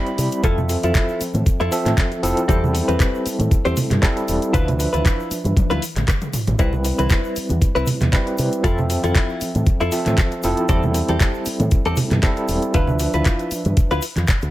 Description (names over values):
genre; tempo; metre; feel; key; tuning
nu-disco, nu disco; 117 BPM; 4/4; swing 55% on 16ths; D dorian; A4 = 440 Hz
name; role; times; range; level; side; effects
overdriven tine electric piano; accompaniment; 0.0-14.0 s; F3 to B5; -23 LUFS; right 1 dB; fast tremolo, sidechain pumping, dub echo
direct-recorded clean electric guitar; riff; 0.1-14.5 s; C4 to C5; -25 LUFS; left 2 dB; lush chorus, low-pass filter, dub echo
house drum kit; drums; 0.1-14.5 s; handclaps, hi-hat, toms; -26 LUFS; left 1 dB; none
tube shaker and congas; percussion; 0.1-14.5 s; none; -25 LUFS; right 2 dB; none
fingered electric bass with an envelope filter; bass; 0.2-14.5 s; E1 to C3; -22 LUFS; equal; none
electronic kick drum; drums; 0.4-14.4 s; none; -17 LUFS; equal; none
room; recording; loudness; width
little or no reverb; none; -17 LUFS; side -15 dB against mid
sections
0.0-14.5 A section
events
drum fill 5.6-6.6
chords
0.4 Fmaj7; 2.5 Am7/E; 4.5 Dm69; 6.6 Cmaj7; 8.6 Fmaj7; 10.7 Am7/E; 12.7 Dm69